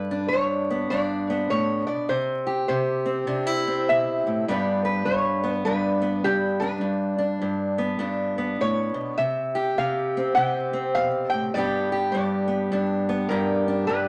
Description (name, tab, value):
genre	acoustic country blues, solo or duo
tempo	102 BPM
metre	4/4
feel	swing 62% on 8ths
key	G major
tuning	A4 = 440 Hz
part	lap resonator guitar	melody	0.0-14.1 s	G4 to G5	-28 LUFS	equal	none
part	fingerpicked steel-string acoustic guitar	accompaniment	0.0-14.1 s	G2 to B4	-26 LUFS	equal	none
room	wet studio reverb, RT60 0.8 s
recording	vinyl crackle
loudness	-24 LUFS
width	mono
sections	0.0-14.1 A section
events	none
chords	0.0 G; 2.1 C; 4.5 G; 9.2 C; 11.5 G